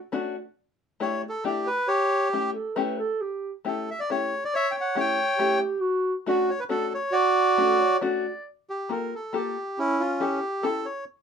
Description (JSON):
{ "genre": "musette waltz", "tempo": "137 BPM", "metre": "3/4", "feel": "straight", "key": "D major", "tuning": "A4 = 440 Hz", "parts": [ { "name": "open-back banjo", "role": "accompaniment", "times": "0.1-10.9 s", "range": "A3 to A4", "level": "-28 LUFS", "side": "left 6 dB", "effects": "none" }, { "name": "bandoneon", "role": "melody", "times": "1.0-11.0 s", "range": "C#4 to G5", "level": "-24 LUFS", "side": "right 1 dB", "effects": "none" }, { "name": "breathy clarinet", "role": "second line", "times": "2.3-8.5 s", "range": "F#4 to D5", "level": "-28 LUFS", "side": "right 2 dB", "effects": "none" } ], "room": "light reverb", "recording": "minimal, uncompressed stereo recording", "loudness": "-23 LUFS", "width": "side -7 dB against mid", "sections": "0.0-8.5 A section; 8.5-11.2 B section", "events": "none", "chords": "0.0 Dmaj7; 0.6 A7sus4; 1.9 A7; 5.8 Dmaj7; 8.5 Gm9; 9.8 A7" }